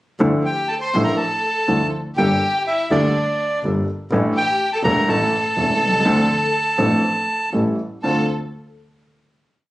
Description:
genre	tango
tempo	123 BPM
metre	4/4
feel	rubato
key	D minor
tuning	A4 = 441 Hz
part	clear upright piano	accompaniment	0.2-8.2 s	E1 to A4	-20 LUFS	equal	none
part	clear double bass	bass	0.2-8.2 s	E1 to D2	-24 LUFS	equal	none
part	bandoneon	melody	0.5-8.3 s	D5 to C6	-20 LUFS	equal	none
part	bright studio violin section	second line	0.5-8.3 s	D4 to C5	-27 LUFS	left 2 dB	none
room	light reverb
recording	recorded on a phone in the room, studio reverb, compression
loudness	-17 LUFS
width	side -17 dB against mid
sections	0.2-8.0 A section; 8.0-9.7 final chord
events	none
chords	0.2 Dmadd9; 2.2 Gmadd9; 4.1 Asus4; 5.1 A; 6.1 Dm7; 7.5 A7; 8.0 Dm7

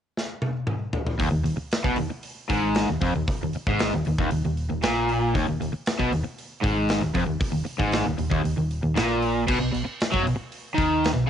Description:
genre	hard rock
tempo	116 BPM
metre	4/4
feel	straight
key	unclear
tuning	A4 = 440 Hz
part	big rock drum kit	drums	0.2-11.2 s	crash cymbal, hi-hat, kick drum, snare drum, toms	-28 LUFS	equal	cassette tape
part	overdriven semi-hollow guitar	riff	1.2-11.3 s	Eb2 to F#3	-23 LUFS	equal	cassette tape
part	fingered electric bass	bass	1.2-11.3 s	Eb1 to F#2	-31 LUFS	equal	none
room	studio ambience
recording	home recording on cassette, nothing above 10.9 kHz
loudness	-22 LUFS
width	side -9 dB against mid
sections	0.0-1.2 A section; 1.2-11.3 B section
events	drum fill 0.2-1.2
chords	0.0 N.C.; 1.2 Eb5; 9.5 B5

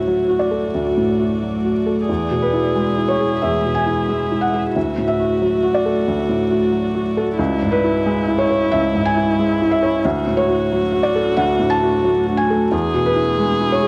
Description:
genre	neoclassical piano and strings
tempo	90 BPM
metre	4/4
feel	rubato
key	unclear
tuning	A4 = 436 Hz
part	dark viola	accompaniment	0.0-13.9 s	E4 to G#4	-24 LUFS	equal	none
part	felt-muted upright piano	accompaniment	0.0-13.9 s	C#2 to A5	-20 LUFS	equal	none
part	ethereal airy pad	sustained chords	0.0-13.9 s	G#3 to E5	-29 LUFS	equal	ensemble chorus, built-in reverb, phaser
room	little or no reverb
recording	dry, close 1970s-style studio recording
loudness	-18 LUFS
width	mono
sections	0.0-13.9 A section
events	none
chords	0.0 D; 2.1 E; 4.8 D; 7.4 C#m7; 10.0 D; 12.7 E

